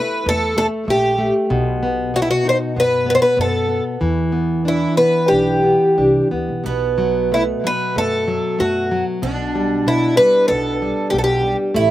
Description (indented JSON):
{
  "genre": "fado-style ballad",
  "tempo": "94 BPM",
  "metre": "4/4",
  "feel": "uneven beats, rubato",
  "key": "unclear",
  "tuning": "A4 = 441 Hz",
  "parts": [
    { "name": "picked twelve-string acoustic guitar", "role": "melody", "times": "0.0-11.6 s", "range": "E4 to C5", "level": "-16 LUFS", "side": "left 1 dB", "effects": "slapback echo" },
    { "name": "nylon-string guitar", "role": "accompaniment", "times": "0.0-11.9 s", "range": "B2 to D#4", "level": "-21 LUFS", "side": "left 1 dB", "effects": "slapback echo" },
    { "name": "upright bass", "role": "bass", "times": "0.3-11.9 s", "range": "A1 to F#2", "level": "-26 LUFS", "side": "right 1 dB", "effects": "none" },
    { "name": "picked twelve-string acoustic guitar", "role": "second line", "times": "6.7-11.9 s", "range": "B3 to E4", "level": "-22 LUFS", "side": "right 6 dB", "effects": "slapback echo" }
  ],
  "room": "little or no reverb",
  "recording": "recorded outdoors, with no room sound",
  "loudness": "-15 LUFS",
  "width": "side -14 dB against mid",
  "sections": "0.0-11.9 A section",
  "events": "none",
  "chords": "0.0 A5; 1.5 B; 4.0 Em7; 6.7 B5; 9.2 Gadd9/B",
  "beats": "0.26 0.88 | 1.51 2.14 2.77 3.38 | 4.01 4.65 5.30 5.98 | 6.65 7.32 7.96 8.59 | 9.23 9.87 10.50 11.12 | 11.74"
}